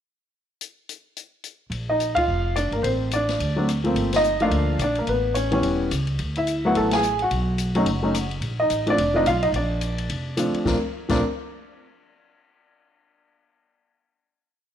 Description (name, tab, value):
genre	jazz piano trio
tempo	215 BPM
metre	4/4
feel	swing 59% on 8ths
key	unclear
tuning	A4 = 438 Hz
part	open jazz drum kit	drums	0.6-11.2 s	crash cymbal, hi-hat, kick drum, ride cymbal, rim click, snare drum	-32 LUFS	left 4 dB	none
part	upright bass	bass	1.7-11.2 s	E1 to D2	-26 LUFS	equal	none
part	warm baby grand piano	melody	1.9-11.2 s	E3 to A5	-22 LUFS	equal	none
room	moderate echo chamber reverb, RT60 1.4 s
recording	1960s-style stereo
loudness	-20 LUFS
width	side -9 dB against mid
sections	0.6-1.7 pickup bar; 1.7-10.7 A section; 10.7-11.8 final chord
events	band accent 2.1, 4.1, 6.9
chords	0.6 N.C.; 1.7 Bb; 2.8 Amadd11; 3.4 D7(no3); 4.0 Gm7; 5.1 A7; 6.2 D6; 7.3 B5; 8.4 Bbmaj9; 10.7 N.C.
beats	| 0.60 0.88 1.16 1.44 | 1.72 2.00 2.28 2.56 | 2.84 3.12 3.40 3.68 | 3.96 4.24 4.52 4.79 | 5.07 5.35 5.63 5.91 | 6.19 6.47 6.75 7.03 | 7.31 7.58 7.86 8.14 | 8.42 8.70 8.98 9.26 | 9.54 9.82 10.10 10.38 | 10.66 10.94